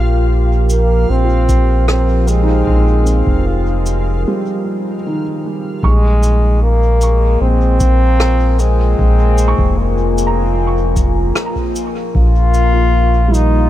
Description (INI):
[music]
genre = ambient dub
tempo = 76 BPM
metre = 4/4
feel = straight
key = Bb dorian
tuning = A4 = 439 Hz
[part]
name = deep dark ambient pad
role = sustained chords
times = 0.0-13.7 s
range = F3 to Ab5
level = -22 LUFS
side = left 2 dB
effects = chorus, built-in reverb
[part]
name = felt-muted upright piano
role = arpeggios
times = 0.0-13.7 s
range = Eb3 to Db6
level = -23 LUFS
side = right 2 dB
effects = tape echo
[part]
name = round analog bass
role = bass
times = 0.0-13.7 s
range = F1 to Bb1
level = -13 LUFS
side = equal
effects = none
[part]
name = backwards swelling texture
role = texture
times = 0.0-4.2 s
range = F4 to F5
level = -31 LUFS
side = left 3 dB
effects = built-in reverb
[part]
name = warm trombone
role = melody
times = 0.7-13.7 s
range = Ab3 to F4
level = -19 LUFS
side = left 1 dB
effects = tape echo
[part]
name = cabasa and rim click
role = drums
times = 0.7-13.5 s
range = none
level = -24 LUFS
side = left 1 dB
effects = dub echo
[part]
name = electronic kick drum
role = drums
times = 1.5-12.3 s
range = none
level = -17 LUFS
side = equal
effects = none
[sound]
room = small room ambience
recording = none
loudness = -11 LUFS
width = side -13 dB against mid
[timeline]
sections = 0.0-5.8 A section; 5.8-13.7 B section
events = break 4.3-5.8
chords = 0.0 Fmadd9; 5.8 Bbm7